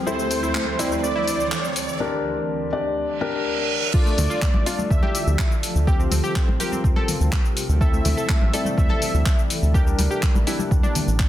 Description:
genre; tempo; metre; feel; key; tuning
progressive house; 124 BPM; 4/4; straight; D minor; A4 = 440 Hz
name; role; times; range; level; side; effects
shimmering ambient pad; sustained chords; 0.0-11.3 s; D2 to C5; -31 LUFS; right 1 dB; chorus, built-in reverb, phaser, sidechain pumping
felt-muted upright piano; stabs; 0.0-11.3 s; C4 to D5; -28 LUFS; left 3 dB; sidechain pumping, dub echo
riser and reverse cymbal; sound effects; 0.0-3.9 s; none; -29 LUFS; right 5 dB; none
wide unison lead; melody; 0.1-9.4 s; C5 to E5; -29 LUFS; right 1 dB; cassette tape, sidechain pumping, dub echo
analog pluck; arpeggios; 0.1-11.3 s; G3 to A4; -29 LUFS; right 1 dB; chorus, cassette tape, sidechain pumping, dub echo
deep house drum kit; drums; 0.1-11.3 s; cabasa, crash cymbal, handclaps, hi-hat; -28 LUFS; left 2 dB; overdrive
electronic kick drum; drums; 3.9-11.3 s; none; -20 LUFS; equal; overdrive
round analog bass; bass; 4.2-11.3 s; A1 to D2; -21 LUFS; equal; sidechain pumping
congas; percussion; 4.2-11.1 s; none; -30 LUFS; left 2 dB; sidechain pumping on perc
room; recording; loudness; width
moderate digital room reverb, RT60 1.1 s, digital ambience; dense, heavily limited modern master; -19 LUFS; side -12 dB against mid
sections
0.0-3.9 A section; 3.9-11.3 B section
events
build-up 0.0-3.9; riser 0.0-2.0; reverse cymbal 3.1-3.9; drop 3.9-11.3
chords
0.1 Am/D; 2.0 Gm/D; 3.9 Dm; 5.9 Csus4; 7.8 Am; 9.7 Gm

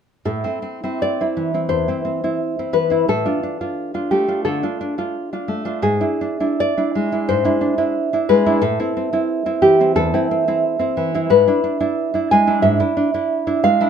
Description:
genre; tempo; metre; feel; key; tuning
romantic piece for solo classical guitar; 88 BPM; 4/4; rubato; A minor; A4 = 438 Hz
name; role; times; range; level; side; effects
nylon-string guitar; solo; 0.3-13.9 s; E2 to G#5; -16 LUFS; equal; none
room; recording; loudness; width
light reverb; minimal, uncompressed stereo recording; -16 LUFS; side -7 dB against mid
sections
0.2-13.9 A section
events
none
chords
0.2 Am; 3.1 Dm/A; 5.8 E7/G#; 8.6 Am; 11.3 E7/G#

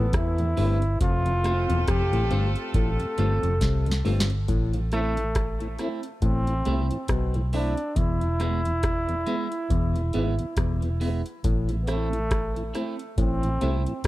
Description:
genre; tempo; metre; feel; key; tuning
roots reggae; 69 BPM; 4/4; swing 57% on 16ths; A harmonic minor from 4.5 s; A4 = 444 Hz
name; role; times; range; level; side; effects
clear trombone; melody; 0.0-14.0 s; A3 to A4; -30 LUFS; equal; dub echo
clear horn section; second line; 0.0-4.0 s; C3 to A4; -36 LUFS; right 1 dB; dub echo
mellow tonewheel organ; accompaniment; 0.0-13.9 s; E2 to F4; -36 LUFS; equal; none
auto-wah clav; riff; 0.0-14.1 s; E2 to E3; -32 LUFS; left 4 dB; none
vintage muted fingered electric bass; bass; 0.0-14.1 s; E1 to E2; -26 LUFS; equal; none
booming analog drum machine; drums; 0.1-14.1 s; hi-hat, kick drum, rim click, snare drum; -26 LUFS; equal; none
clean electric guitar; accompaniment; 0.6-13.8 s; G#3 to F4; -35 LUFS; right 3 dB; dub echo
room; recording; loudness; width
digital ambience; dry, close 1970s-style studio recording; -23 LUFS; side -16 dB against mid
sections
0.0-4.5 A section; 4.5-14.1 B section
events
drum fill 3.6-4.5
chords
0.0 Am; 1.0 F; 4.5 Am; 8.0 E; 11.4 Am

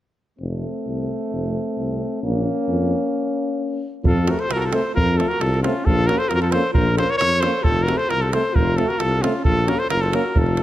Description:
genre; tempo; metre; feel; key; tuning
balkan folk, Balkan brass band; 133 BPM; 2/4; straight; unclear; A4 = 441 Hz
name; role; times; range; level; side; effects
clear trombone; accompaniment; 0.4-10.6 s; A3 to Bb3; -28 LUFS; right 5 dB; none
warm euphonium; accompaniment; 0.4-10.6 s; C4 to Db4; -28 LUFS; left 5 dB; none
mellow tuba; bass; 0.4-10.6 s; F1 to F2; -23 LUFS; equal; none
mellow alto saxophone; second line; 4.0-10.6 s; Db4 to Bb4+21c; -26 LUFS; left 3 dB; none
clear trumpet; melody; 4.1-10.6 s; F4 to Db5; -22 LUFS; equal; none
davul; percussion; 4.1-10.6 s; none; -23 LUFS; right 1 dB; none
room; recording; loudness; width
light reverb; close, detailed microphones, lossy compression artefacts; -18 LUFS; side -13 dB against mid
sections
0.4-4.1 A section; 4.1-10.6 B section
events
break 3.1-4.1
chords
0.4 F; 2.2 Bbm; 4.1 F; 5.9 Bbm; 7.7 F; 9.5 Bbm

